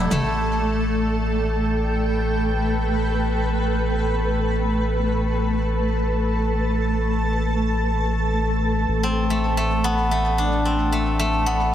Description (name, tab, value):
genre	downtempo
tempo	free time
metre	none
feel	none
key	A minor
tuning	A4 = 439 Hz
part	granular cloud pad	sustained chords	0.0-11.7 s	A3 to A5	-23 LUFS	equal	built-in reverb
part	steel-string zither	arpeggios	0.0-3.4, 9.0-11.7 s	A3 to G4	-24 LUFS	left 1 dB	digital delay
part	round analog bass	bass	0.0-11.7 s	E1 to A1	-23 LUFS	equal	none
room	light reverb, digital ambience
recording	heavily compressed radio sound, multiband compression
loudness	-19 LUFS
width	side -10 dB against mid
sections	0.2-11.7 A section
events	none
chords	0.2 A5; 8.9 Cadd9/A